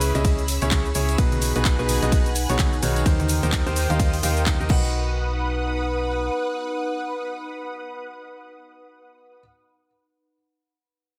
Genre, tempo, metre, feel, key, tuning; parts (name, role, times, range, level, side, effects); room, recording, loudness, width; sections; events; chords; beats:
piano house; 128 BPM; 4/4; swing 59% on 16ths; A4 = 438 Hz
analog string pad; sustained chords; 0.0-9.4 s; B4 to F#6; -34 LUFS; equal; ensemble chorus, sidechain pumping
clear concert grand piano; riff; 0.0-9.4 s; B2 to F#5; -29 LUFS; equal; sidechain pumping, delay
solid FM bass; bass; 0.0-6.3 s; B1 to D#2; -27 LUFS; equal; sidechain pumping
house drum kit; drums; 0.0-4.8 s; cabasa, crash cymbal, handclaps, hi-hat, ride cymbal; -31 LUFS; equal; small room reverb
tambourine and congas; percussion; 0.0-4.9 s; -36 LUFS; equal
warbly tape-like pad; texture; 0.0-9.4 s; C#4 to B#5; -34 LUFS; equal; chorus, built-in reverb, sidechain pumping
electronic kick drum; drums; 0.2-4.8 s; -23 LUFS; equal; small room reverb
light reverb, digital ambience; -22 LUFS; mono
0.0-4.9 A section; 4.9-8.7 B section
drop 0.0-4.9
0.0 C#m7; 1.2 G#m7/B; 3.1 D#6; 4.7 B
0.25 0.71 | 1.18 1.65 2.12 2.59 | 3.06 3.53 4.00 4.46 | 4.93 5.40 5.87 6.34 | 6.81 7.28 7.75 8.21